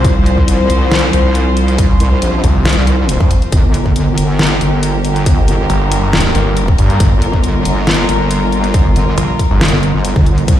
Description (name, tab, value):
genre	heavy wobble dubstep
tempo	138 BPM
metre	4/4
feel	half-time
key	G minor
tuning	A4 = 437 Hz
part	warm studio string section	sustained chords	0.0-10.6 s	D3 to C5	-18 LUFS	left 1 dB	sidechain pumping
part	snarling distorted saw bass	bass	0.0-9.7 s	G1 to G2	-14 LUFS	equal	distortion, overdrive
part	wobble bass	bass	0.0-10.6 s	G1 to C2	-13 LUFS	equal	chorus, overdrive
part	dubstep drum kit	drums	0.0-10.6 s	hi-hat, snare drum	-17 LUFS	left 1 dB	none
part	electronic kick drum	drums	0.0-10.6 s	none	-12 LUFS	equal	none
room	little or no reverb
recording	played on a big sound system in a bare room, large studio reverb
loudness	-10 LUFS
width	side -12 dB against mid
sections	0.0-10.6 A section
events	none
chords	0.0 Csus4; 3.5 Gm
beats	| 0.05 0.48 0.92 1.35 | 1.78 2.22 2.65 3.09 | 3.52 3.96 4.39 4.83 | 5.26 5.70 6.13 6.57 | 7.00 7.44 7.87 8.31 | 8.74 9.18 9.61 10.05 | 10.48